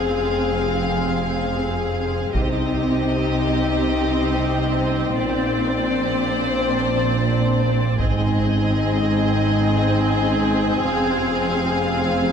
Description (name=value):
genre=cinematic, epic orchestral film score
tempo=free time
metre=none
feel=none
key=unclear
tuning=A4 = 440 Hz
part: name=rich symphonic violin section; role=melody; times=0.0-12.3 s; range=D5 to F5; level=-28 LUFS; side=left 2 dB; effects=none
part: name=warm symphonic violin section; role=second line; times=0.0-12.3 s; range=G4 to C5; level=-26 LUFS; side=left 2 dB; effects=none
part: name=warm symphonic viola section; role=accompaniment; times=0.0-12.3 s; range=C4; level=-26 LUFS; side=right 2 dB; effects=none
part: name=warm French horn section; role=sustained chords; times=0.0-12.3 s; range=C4 to Ab4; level=-24 LUFS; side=left 6 dB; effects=none
part: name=rich symphonic cello section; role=bass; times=0.0-12.3 s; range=F2 to C3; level=-25 LUFS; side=right 2 dB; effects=none
part: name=rich symphonic double bass section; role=bass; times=0.0-12.3 s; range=F1 to C2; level=-25 LUFS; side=right 4 dB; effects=none
part: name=taiko ensemble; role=drums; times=2.3-3.7, 8.0-9.4 s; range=none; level=-27 LUFS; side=equal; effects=none
room=wet concert hall reverb, RT60 2.2 s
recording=none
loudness=-18 LUFS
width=side -7 dB against mid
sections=0.0-12.3 A section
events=build-up 0.0-12.3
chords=0.0 Fm; 2.3 Cm; 5.2 Bbadd9; 8.0 Ab; 10.8 Fm